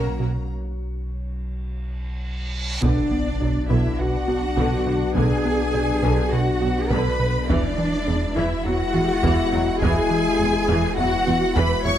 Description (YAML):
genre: cinematic, hybrid orchestral and electronic film score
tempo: 103 BPM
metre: 4/4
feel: straight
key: B dorian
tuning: A4 = 444 Hz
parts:
  - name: warm symphonic violin section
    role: melody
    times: 0.0-12.0 s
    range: D5 to C#6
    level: -36 LUFS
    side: left 5 dB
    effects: none
  - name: rich symphonic violin section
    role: second line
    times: 0.0-12.0 s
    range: F#4 to C#6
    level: -29 LUFS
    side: left 3 dB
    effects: none
  - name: dark symphonic viola section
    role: accompaniment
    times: 0.0-12.0 s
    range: D3 to E4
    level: -29 LUFS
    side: equal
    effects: none
  - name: glassy FM pad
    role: sustained chords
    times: 0.1-12.0 s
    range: F#3 to D5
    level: -33 LUFS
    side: left 3 dB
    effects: ensemble chorus, built-in reverb
  - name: mellow French horn section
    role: sustained chords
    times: 0.0-12.0 s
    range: F#3 to E4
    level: -29 LUFS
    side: left 5 dB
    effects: none
  - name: tight sequenced synth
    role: arpeggios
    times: 0.0-12.0 s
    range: E3 to B4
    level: -33 LUFS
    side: left 1 dB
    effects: none
  - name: rubbery square bass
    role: riff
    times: 0.0-12.0 s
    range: E2 to B3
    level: -26 LUFS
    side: right 2 dB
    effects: none
  - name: dark symphonic cello section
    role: bass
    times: 0.0-12.0 s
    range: A#3 to C#5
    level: -26 LUFS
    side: right 1 dB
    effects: none
  - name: saturated sub bass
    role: bass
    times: 0.0-12.0 s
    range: E1 to B1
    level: -29 LUFS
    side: equal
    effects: none
  - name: rich symphonic double bass section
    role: bass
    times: 0.2-11.9 s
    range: B1 to E2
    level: -28 LUFS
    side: right 2 dB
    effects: none
  - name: reverse cymbal and impact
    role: sound effects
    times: 2.0-5.2 s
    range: none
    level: -33 LUFS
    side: equal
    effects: none
  - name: taiko ensemble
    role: drums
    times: 2.8-12.0 s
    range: none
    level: -27 LUFS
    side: equal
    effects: none
room: light reverb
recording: close, detailed microphones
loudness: -19 LUFS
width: side -10 dB against mid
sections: 0.0-2.8 A section; 2.8-12.0 B section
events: break 0.5-2.8; drum fill 2.0-2.8; reverse cymbal 2.0-2.8; impact 2.8-5.2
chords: 0.0 F#/B; 2.8 Bm; 7.5 Eadd9